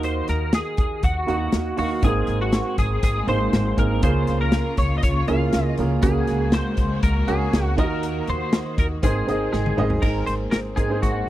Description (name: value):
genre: piano-driven pop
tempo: 120 BPM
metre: 4/4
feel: straight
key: Ab mixolydian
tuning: A4 = 440 Hz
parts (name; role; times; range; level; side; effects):
- twelve-string electric guitar; melody; 0.0-11.3 s; Gb4 to F5; -27 LUFS; left 1 dB; ensemble chorus
- clear upright piano; accompaniment; 0.0-11.3 s; Ab2 to Gb5; -26 LUFS; right 4 dB; none
- upright bass; bass; 0.0-11.2 s; Ab1 to Ab2; -24 LUFS; equal; none
- natural country drum kit; drums; 0.0-11.1 s; crash cymbal, hi-hat, kick drum, snare drum, toms; -22 LUFS; equal; none
- rich studio string section; sustained chords; 2.0-11.3 s; Db3 to Gb4; -31 LUFS; left 3 dB; none
room: little or no reverb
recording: dry, close 1970s-style studio recording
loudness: -19 LUFS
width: side -14 dB against mid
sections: 0.0-10.0 A section; 10.0-11.3 B section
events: drum fill 9.5-10.0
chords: 0.0 Ebm; 2.0 Abadd9; 4.0 Db6; 6.0 Gbadd9/Db; 7.8 Ebm; 9.0 Abadd9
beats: | 0.04 0.54 1.04 1.54 | 2.04 2.54 3.04 3.54 | 4.03 4.53 5.03 5.53 | 6.03 6.53 7.03 7.53 | 8.03 8.53 9.03 9.53 | 10.03 10.53 11.03